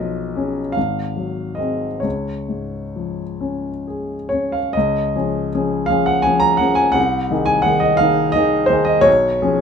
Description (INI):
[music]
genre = classical, romantic nocturne for solo piano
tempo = 42-59 BPM (dotted quarters)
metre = 12/8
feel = rubato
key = Db major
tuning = A4 = 440 Hz
[part]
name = warm grand piano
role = solo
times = 0.0-9.6 s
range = Ab1 to Bb5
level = -16 LUFS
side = equal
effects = none
[sound]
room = light reverb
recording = minimal, uncompressed stereo recording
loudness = -16 LUFS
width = side -6 dB against mid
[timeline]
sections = 0.0-4.8 A section; 4.8-9.6 A section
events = none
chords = 0.0 Db7/Cb; 0.8 Ab7; 2.0 Db; 7.0 Ab/C; 9.1 Db7/Cb